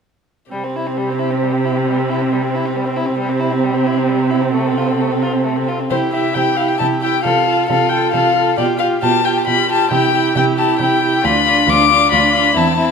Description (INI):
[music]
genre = quick classical-period movement for string quartet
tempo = 135 BPM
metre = 3/4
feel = rubato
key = C major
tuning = A4 = 440 Hz
[part]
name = dark violin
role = melody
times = 0.5-12.9 s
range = G4 to D6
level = -17 LUFS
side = left 7 dB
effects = none
[part]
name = rich violin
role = second line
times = 0.5-12.9 s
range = G3 to A4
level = -20 LUFS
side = left 1 dB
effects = none
[part]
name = rich viola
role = accompaniment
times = 0.5-12.9 s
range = C4 to F4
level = -19 LUFS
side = right 3 dB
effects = none
[part]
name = warm cello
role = bass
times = 0.5-12.9 s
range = D2 to C3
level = -21 LUFS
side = right 6 dB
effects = none
[sound]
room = moderate recital hall reverb, RT60 1.5 s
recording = minimal, uncompressed stereo recording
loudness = -13 LUFS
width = side -6 dB against mid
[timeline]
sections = 0.5-5.9 A section; 5.9-12.9 B section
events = none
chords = 0.5 C; 7.3 F/C; 8.6 G7/B; 9.9 C; 11.2 Bdim/D